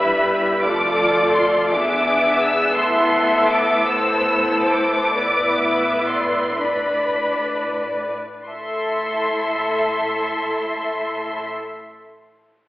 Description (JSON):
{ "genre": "classical, slow romantic movement for string orchestra", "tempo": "28-57 BPM (dotted quarters)", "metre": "6/8", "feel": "rubato", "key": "A minor", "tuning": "A4 = 440 Hz", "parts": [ { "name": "rich studio violin section", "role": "melody", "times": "0.0-11.5 s", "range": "B5 to E6", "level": "-22 LUFS", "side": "equal", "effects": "none" }, { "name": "rich studio violin section", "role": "second line", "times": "0.0-11.5 s", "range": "G#4 to E5", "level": "-20 LUFS", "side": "left 1 dB", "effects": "none" }, { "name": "warm studio viola section", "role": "accompaniment", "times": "0.0-11.5 s", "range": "G3 to F4", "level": "-23 LUFS", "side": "equal", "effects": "none" }, { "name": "rich studio double bass section", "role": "bass", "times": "0.0-11.5 s", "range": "E1 to A1", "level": "-42 LUFS", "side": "equal", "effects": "none" }, { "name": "warm studio cello section", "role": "bass", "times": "0.0-11.5 s", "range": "E2 to A2", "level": "-32 LUFS", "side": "equal", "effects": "none" } ], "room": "wet scoring stage reverb, RT60 1.5 s", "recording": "heard from further back in the room, telephone sound", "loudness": "-17 LUFS", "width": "side -16 dB against mid", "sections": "0.0-8.5 A section; 8.5-12.7 B section", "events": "slowing down 1.7-8.5", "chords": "0.0 Em/G; 0.6 F; 1.7 E7; 2.8 Am; 5.1 E5/A; 8.5 Am" }